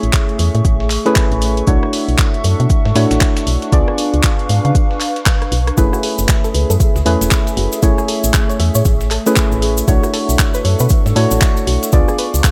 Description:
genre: deep house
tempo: 117 BPM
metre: 4/4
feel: swing 60% on 16ths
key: unclear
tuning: A4 = 443 Hz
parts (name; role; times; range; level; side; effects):
- hollow soft pad; sustained chords; 0.0-12.5 s; A3 to C#6; -26 LUFS; equal; chorus, sidechain pumping
- percussive organ stab; stabs; 0.0-12.5 s; A3 to D5; -21 LUFS; equal; chorus, cassette tape, sidechain pumping, analog delay
- woody FM bass; bass; 0.0-12.4 s; E1 to C#3; -18 LUFS; equal; tube saturation
- deep house drum kit; drums; 0.0-12.5 s; handclaps, hi-hat, rim click; -24 LUFS; equal; overdrive
- dusty soul sampler-style drum kit; drums; 0.1-12.5 s; hi-hat, shaker, snare drum; -32 LUFS; equal; none
- electronic kick drum; drums; 0.1-12.5 s; none; -16 LUFS; equal; overdrive
- soft round pluck; arpeggios; 5.8-12.3 s; E4 to E5; -28 LUFS; equal; chorus, sidechain pumping, analog delay
- cabasa; percussion; 5.8-12.5 s; none; -28 LUFS; equal; none
room: light reverb, digital ambience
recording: none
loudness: -15 LUFS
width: mono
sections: 0.0-12.5 A section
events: drum fill 5.3-5.8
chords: 0.0 Amaj7; 1.7 Bm11; 3.7 C#7b9; 5.8 F#m11; 7.8 Amaj7; 9.9 Bm11; 11.9 C#7b9

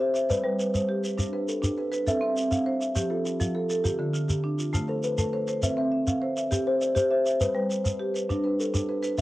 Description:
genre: southern african traditional, mbira-style interlocking cycle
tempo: 135 BPM (dotted quarters)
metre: 12/8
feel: straight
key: unclear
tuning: A4 = 443 Hz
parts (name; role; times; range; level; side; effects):
- kalimba; arpeggios; 0.0-9.2 s; D3 to E5; -27 LUFS; left 1 dB; cassette tape
- marimba with medium mallets; arpeggios; 0.0-9.2 s; D3 to F5; -28 LUFS; right 2 dB; cassette tape
- shekere; percussion; 0.2-9.2 s; none; -29 LUFS; equal; none
room: moderate studio reverb, RT60 0.5 s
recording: home recording on cassette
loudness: -24 LUFS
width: side -17 dB against mid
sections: 0.0-9.2 A section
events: none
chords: 0.3 G; 2.1 C; 3.0 F; 3.8 Dm; 4.7 Am; 5.6 C; 7.4 G

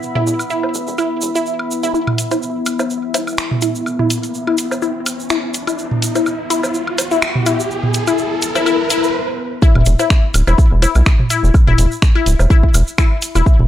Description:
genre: minimal techno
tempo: 125 BPM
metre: 4/4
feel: swing 55% on 16ths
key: unclear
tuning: A4 = 441 Hz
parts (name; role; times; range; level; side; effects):
- egg shaker; percussion; 0.0-13.6 s; none; -26 LUFS; right 3 dB; none
- deep dark ambient pad; texture; 0.0-9.1 s; B3 to B5; -24 LUFS; left 2 dB; chorus, built-in reverb, sidechain pumping
- resonant blip pluck; riff; 0.2-13.4 s; E4; -20 LUFS; left 3 dB; phaser, sidechain pumping, tape echo
- rubbery square bass; bass; 0.2-1.9, 9.8-13.7 s; D1 to B1; -14 LUFS; equal; sidechain pumping, high-pass filter
- electronic toms and woodblock; percussion; 0.2-13.7 s; none; -21 LUFS; right 1 dB; overdrive, studio reverb
- riser; sound effects; 3.6-9.1 s; none; -24 LUFS; right 3 dB; none
- house drum kit; drums; 2.2-13.3 s; finger snaps, hi-hat; -21 LUFS; equal; studio reverb
- electronic kick drum; drums; 9.6-13.6 s; none; -11 LUFS; equal; studio reverb
room: light reverb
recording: dry, gritty hardware recording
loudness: -13 LUFS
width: side -12 dB against mid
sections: 0.0-1.9 A section; 1.9-9.6 B section; 9.6-13.7 C section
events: build-up 1.9-9.6; filter sweep on synth pluck 1.9-9.6; riser 3.6-9.1; stop 9.1-9.6; drop 9.6-13.7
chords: 0.0 E5

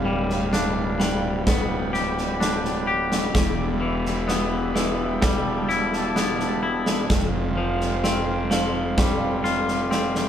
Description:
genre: post-rock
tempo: 64 BPM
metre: 4/4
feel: straight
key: unclear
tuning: A4 = 440 Hz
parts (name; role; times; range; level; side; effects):
- lush unison pad; sustained chords; 0.0-10.3 s; G4 to C6; -32 LUFS; right 2 dB; chorus
- twangy electric guitar; arpeggios; 0.0-10.3 s; E2 to G4; -26 LUFS; left 2 dB; none
- fuzz fingered electric bass; bass; 0.0-10.3 s; D1 to F1; -27 LUFS; equal; overdrive
- big rock drum kit; drums; 0.3-10.3 s; kick drum, snare drum; -25 LUFS; right 1 dB; none
room: moderate small room ambience, RT60 0.5 s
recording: band playing live in one room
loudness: -20 LUFS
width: side -9 dB against mid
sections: 0.0-10.3 A section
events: drum fill 9.9-10.3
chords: 0.0 G7/D; 3.3 Em7; 7.1 Fsus2

